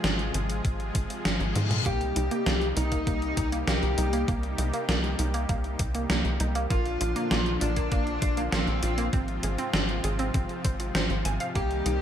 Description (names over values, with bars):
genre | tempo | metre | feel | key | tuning
synthwave | 99 BPM | 4/4 | straight | unclear | A4 = 440 Hz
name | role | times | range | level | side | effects
soft supersaw | sustained chords | 0.0-12.0 s | Ab2 to Ab4 | -34 LUFS | equal | sidechain pumping
tight sequencer bass | bass | 0.0-12.0 s | Ab1 to Ab2 | -29 LUFS | equal | sidechain pumping
gated 80s digital drum machine | drums | 0.0-12.0 s | hi-hat, snare drum, toms | -30 LUFS | equal | gated reverb, gated reverb snare, overdrive
electronic kick drum | drums | 0.6-11.7 s | none | -29 LUFS | equal | none
reverse cymbal | sound effects | 1.2-1.9 s | none | -35 LUFS | left 6 dB | none
bluesy overdriven lead guitar | melody | 1.9-12.0 s | C4 to G4 | -32 LUFS | left 2 dB | distortion, ping-pong delay
analog pluck | arpeggios | 1.9-12.0 s | Bb3 to Ab5 | -34 LUFS | right 2 dB | chorus, ping-pong delay
room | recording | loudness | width
moderate plate reverb, RT60 1.5 s | bright 1980s-style digital production | -25 LUFS | side -9 dB against mid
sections
0.0-12.0 A section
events
reverse cymbal 1.2-1.9; drum fill 1.6-1.9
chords
0.0 Fm/Ab; 1.9 Cm7; 6.7 Bb; 9.1 Fm/Ab